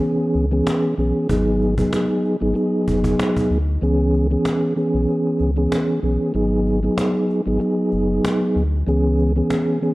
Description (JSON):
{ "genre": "hip hop, boom-bap hip-hop", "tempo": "95 BPM", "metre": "4/4", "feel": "swing 55% on 16ths", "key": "C# minor", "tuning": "A4 = 439 Hz", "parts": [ { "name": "mellow tonewheel organ", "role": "accompaniment", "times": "0.0-9.9 s", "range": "E3 to G#4", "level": "-18 LUFS", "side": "equal", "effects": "fast rotary speaker, cassette tape, high-pass filter, low-pass filter" }, { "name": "cajon", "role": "drums", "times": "0.0-9.9 s", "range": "none", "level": "-27 LUFS", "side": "equal", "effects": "none" }, { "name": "sub bass with octave", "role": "bass", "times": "0.3-9.4 s", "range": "F#1 to D2", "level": "-21 LUFS", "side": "equal", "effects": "none" } ], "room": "light reverb, small room ambience", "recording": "rough home demo mix", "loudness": "-17 LUFS", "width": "side -19 dB against mid", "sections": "0.0-3.8 A section; 3.8-9.9 A section", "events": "kick muted 3.8-9.9", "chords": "0.0 C#m7; 1.3 G#m7; 3.8 C#m7; 6.3 G#m7; 8.9 C#m7", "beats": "0.03 0.66 | 1.29 1.93 2.56 3.19 | 3.82 4.45 5.08 5.72 | 6.35 6.98 7.61 8.24 | 8.87 9.51" }